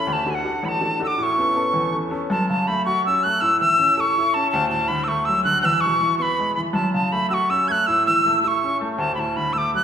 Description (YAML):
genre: celtic folk, Celtic jig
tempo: 108 BPM (dotted quarters)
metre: 6/8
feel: straight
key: A major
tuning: A4 = 444 Hz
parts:
  - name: bright reedy mid whistle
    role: melody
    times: 0.0-9.8 s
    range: F#5 to G#6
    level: -19 LUFS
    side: equal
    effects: none
  - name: bright upright piano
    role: accompaniment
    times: 0.0-9.8 s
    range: A1 to A4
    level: -24 LUFS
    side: equal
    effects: none
room: wet recital hall reverb, RT60 1.6 s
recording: recorded in a church or concert hall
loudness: -18 LUFS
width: side -8 dB against mid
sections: 0.0-2.3 A section; 2.3-9.8 B section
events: none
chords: 0.1 D; 1.2 Aadd9; 2.3 F#m; 3.4 A; 4.5 D; 5.6 E; 6.8 F#m; 7.9 A; 9.0 D5